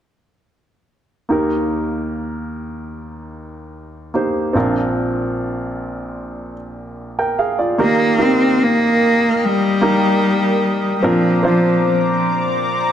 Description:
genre	pop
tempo	74 BPM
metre	4/4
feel	straight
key	Eb major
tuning	A4 = 440 Hz
part	clear baby grand piano	accompaniment	1.3-12.9 s	Bb1 to G5	-19 LUFS	right 1 dB	none
part	rich cello	melody	7.8-12.2 s	F3 to C4	-16 LUFS	equal	none
part	chorused pulse-width pad	sustained chords	7.8-12.9 s	Bb4 to Eb6	-22 LUFS	left 2 dB	none
room	moderate concert hall reverb, RT60 2.1 s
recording	none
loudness	-15 LUFS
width	side -9 dB against mid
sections	1.3-7.8 A section; 7.8-12.9 B section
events	none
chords	1.3 Eb; 4.5 Bbadd9; 7.8 Eb; 11.0 Bbadd9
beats	| 1.30 2.11 2.92 3.74 | 4.55 5.36 6.17 6.98 | 7.79 8.60 9.41 10.22 | 11.03 11.84 12.65

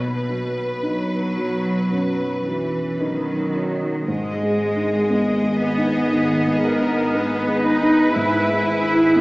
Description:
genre	cinematic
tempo	54-60 BPM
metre	4/4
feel	rubato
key	B major, G# minor from 4.1 s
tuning	A4 = 440 Hz
part	clear symphonic violin section	melody	0.0-3.6 s	B4	-28 LUFS	equal	none
part	dark baby grand piano	accompaniment	0.0-9.2 s	B1 to E4	-22 LUFS	equal	none
part	clear symphonic cello section	bass	0.0-9.2 s	B2 to E4	-21 LUFS	equal	none
part	clear chamber violin section	second line	4.1-9.2 s	G#4 to E5	-28 LUFS	left 2 dB	none
part	rich symphonic double bass section	bass	4.1-9.2 s	G#1	-31 LUFS	equal	none
part	clear symphonic viola section	accompaniment	6.1-9.2 s	G#4 to B4	-24 LUFS	equal	none
room	wet scoring stage reverb, RT60 1.9 s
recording	heard from further back in the room, small speaker sound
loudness	-18 LUFS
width	side -21 dB against mid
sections	0.0-4.1 A section; 4.1-9.2 B section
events	none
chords	0.0 B; 4.1 G#m; 8.2 E/G#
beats	0.83 1.93 3.02 | 4.09 5.10 6.12 7.15 | 8.16 9.16

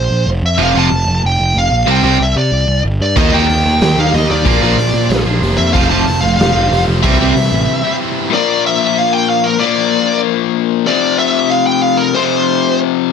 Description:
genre	punk rock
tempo	187 BPM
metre	4/4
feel	straight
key	F major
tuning	A4 = 440 Hz
part	smooth overdriven lead guitar	melody	0.0-12.8 s	Bb4 to A5	-15 LUFS	equal	none
part	fuzz picked electric bass	bass	0.0-7.7 s	F1 to C3	-15 LUFS	equal	overdrive
part	biting overdriven guitar	riff	0.6-7.3 s	F2 to Eb4	-16 LUFS	right 16 dB	none
part	raw garage guitar	riff	0.6-13.1 s	F2 to Eb4	-15 LUFS	left 16 dB	overdrive
part	sludgy distorted guitar	riff	3.2-8.3 s	Bb2 to G4	-17 LUFS	equal	overdrive
part	raw garage drum kit	drums	3.2-7.4 s	crash cymbal, hi-hat, kick drum, snare drum	-18 LUFS	equal	none
room	little or no reverb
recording	none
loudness	-11 LUFS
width	side -6 dB against mid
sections	0.0-8.3 A section; 8.3-13.1 B section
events	half time 0.0-8.3; break 7.7-8.3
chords	0.0 Bb5; 0.6 F; 1.9 C5; 3.2 Eb; 4.5 Bb; 5.7 F; 7.0 C; 8.3 Bb; 10.9 F5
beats	0.28 | 0.60 0.92 1.24 1.56 | 1.88 2.20 2.53 2.85 | 3.17 3.49 3.81 4.14 | 4.46 4.78 5.10 5.42 | 5.75 6.07 6.39 6.71 | 7.04 7.36 7.68 8.00 | 8.32 8.64 8.96 9.28 | 9.60 9.92 10.24 10.56 | 10.88 11.20 11.52 11.84 | 12.16 12.48 12.80 13.12

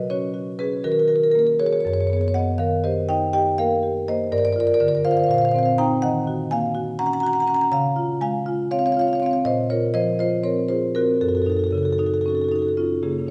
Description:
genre	classical, contemporary piece for solo marimba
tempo	243 BPM (eighths)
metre	7/8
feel	rubato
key	unclear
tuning	A4 = 440 Hz
part	marimba with medium mallets	solo	0.0-13.3 s	F#2 to A#5	-21 LUFS	equal	none
room	wet recital hall reverb, RT60 1.5 s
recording	heard from further back in the room, nothing above 10.5 kHz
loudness	-21 LUFS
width	mono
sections	0.0-13.0 A section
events	none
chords	0.0 Bsus2; 0.8 D#m; 1.8 F#sus24; 2.6 D#add9; 4.3 Gm7; 5.3 A#sus24; 6.0 Ebm11; 7.7 Dbmaj7; 9.5 Bbsus2; 11.2 Gbm6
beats	0.10 0.35 0.60 | 0.85 1.10 1.35 1.60 1.85 2.10 2.34 | 2.58 2.83 3.08 3.33 3.58 3.83 4.07 | 4.32 4.56 4.81 5.05 5.29 5.53 5.78 | 6.02 6.26 6.51 6.75 7.00 7.24 7.48 | 7.72 7.97 8.21 8.46 8.71 8.96 9.21 | 9.45 9.70 9.94 10.19 10.44 10.69 10.94 | 11.20 11.46 11.72 11.98 12.24 12.50 12.76 | 13.02 13.27

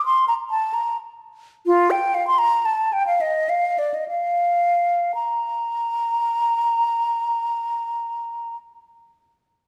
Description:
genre	classical, baroque-style fantasia for unaccompanied flute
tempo	54-89 BPM (dotted quarters)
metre	6/8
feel	rubato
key	Bb major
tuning	A4 = 441 Hz
part	mellow hollow silver concert flute	solo	0.0-8.6 s	F4 to C6	-22 LUFS	equal	none
room	moderate recital hall reverb, RT60 1.6 s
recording	none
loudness	-22 LUFS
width	mono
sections	0.0-5.2 A section; 5.2-9.5 B section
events	slowing down 1.0-5.2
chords	none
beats	| 0.28 0.97 | 1.68 2.41 | 3.21 4.11 | 5.15 6.22 | 7.30 8.38

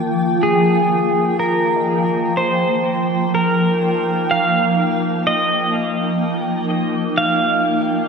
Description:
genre	ambient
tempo	62 BPM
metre	3/4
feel	straight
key	Eb major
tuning	A4 = 437 Hz
part	granular cloud pad	sustained chords	0.0-8.1 s	F3 to G5	-18 LUFS	equal	built-in reverb, ensemble chorus
part	bowed-like drone	drone	0.0-1.5 s	Eb3 to Bb3	-32 LUFS	left 2 dB	none
part	pedal steel guitar	melody	0.4-8.1 s	Ab4 to F5	-18 LUFS	right 1 dB	analog chorus, diffuse ambient delay
part	felt-muted upright piano	arpeggios	1.8-8.1 s	Eb5	-42 LUFS	right 2 dB	none
room	wet plate reverb, RT60 3.7 s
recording	dreamy mix soaked in reverb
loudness	-15 LUFS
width	side -5 dB against mid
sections	0.0-1.4 A section; 1.4-8.1 B section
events	none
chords	0.0 Ebadd9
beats	0.41 | 1.40 2.36 3.33 | 4.29 5.25 6.20 | 7.15

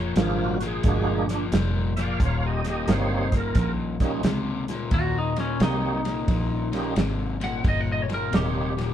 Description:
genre	electric blues shuffle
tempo	88 BPM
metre	4/4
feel	swing 66% on 8ths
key	Eb mixolydian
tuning	A4 = 440 Hz
part	tonewheel organ	accompaniment	0.0-8.7 s	F3 to F5	-28 LUFS	right 4 dB	slow rotary speaker, overdrive, chorus vibrato
part	overdriven semi-hollow guitar	riff	0.0-8.9 s	Eb2 to G3	-29 LUFS	left 5 dB	none
part	fingered electric bass	bass	0.0-8.9 s	Eb1 to Eb2	-27 LUFS	equal	none
part	warm soul drum kit	drums	0.2-8.9 s	hi-hat, kick drum, ride cymbal, snare drum	-26 LUFS	right 1 dB	none
part	lightly driven lead guitar	melody	4.9-8.9 s	Db4 to Gb5	-29 LUFS	left 1 dB	none
room	moderate studio reverb, RT60 0.8 s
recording	band playing live in one room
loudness	-22 LUFS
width	side -10 dB against mid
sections	0.0-4.9 A section; 4.9-8.9 A section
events	lead electric guitar solo 4.9-8.9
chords	0.0 Bb7; 2.2 Eb7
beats	0.17 0.85 1.52 | 2.20 2.88 3.56 4.24 | 4.92 5.60 6.28 6.96 | 7.64 8.32

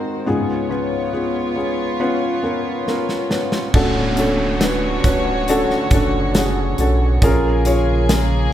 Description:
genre	pop ballad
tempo	69 BPM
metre	4/4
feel	straight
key	unclear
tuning	A4 = 440 Hz
part	felt-muted upright piano	accompaniment	0.0-8.5 s	C#2 to C#5	-20 LUFS	left 1 dB	none
part	warm chamber string section	sustained chords	0.0-8.5 s	C#3 to C#5	-24 LUFS	equal	none
part	modern studio drum kit	drums	2.9-8.3 s	crash cymbal, hi-hat, kick drum, snare drum	-20 LUFS	equal	none
part	warm sub bass	bass	3.7-8.5 s	D1 to B1	-20 LUFS	equal	none
part	downlifter	sound effects	3.7-8.5 s	none	-28 LUFS	right 2 dB	none
room	moderate concert hall reverb, RT60 2.2 s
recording	recorded in a church or concert hall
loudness	-16 LUFS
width	side -11 dB against mid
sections	0.0-3.7 A section; 3.7-8.5 B section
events	drum fill 2.9-3.7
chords	0.3 C#7; 3.7 Dmaj7; 7.2 A#m7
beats	| 0.27 1.14 2.00 2.87 | 3.74 4.61 5.48 6.35 | 7.22 8.09

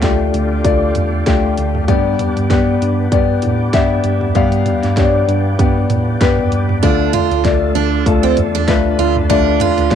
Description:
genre	piano-driven pop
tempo	97 BPM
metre	4/4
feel	swing 56% on 16ths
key	D dorian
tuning	A4 = 436 Hz
part	warm grand piano	accompaniment	0.0-9.9 s	G2 to F5	-16 LUFS	left 7 dB	cassette tape, plate reverb
part	tonewheel organ	sustained chords	0.0-9.9 s	D3 to B4	-26 LUFS	right 2 dB	overdrive, chorus vibrato, slow rotary speaker, cassette tape
part	mellow tine electric piano	bass	0.0-9.9 s	D2 to A2	-18 LUFS	right 2 dB	medium stereo tremolo
part	pop drum kit	drums	0.0-9.9 s	hi-hat, kick drum, snare drum, toms	-18 LUFS	right 3 dB	cassette tape
part	picked steel-string acoustic guitar	riff	6.8-9.9 s	C4 to F4	-17 LUFS	right 15 dB	cassette tape
room	moderate studio reverb, RT60 0.5 s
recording	home recording on cassette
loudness	-12 LUFS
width	side -8 dB against mid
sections	0.0-9.9 A section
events	none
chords	0.0 Dm; 1.9 G; 6.8 Dm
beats	0.03 0.65 1.27 | 1.89 2.50 3.12 3.74 | 4.36 4.97 5.59 6.21 | 6.83 7.44 8.06 8.68 | 9.29 9.91

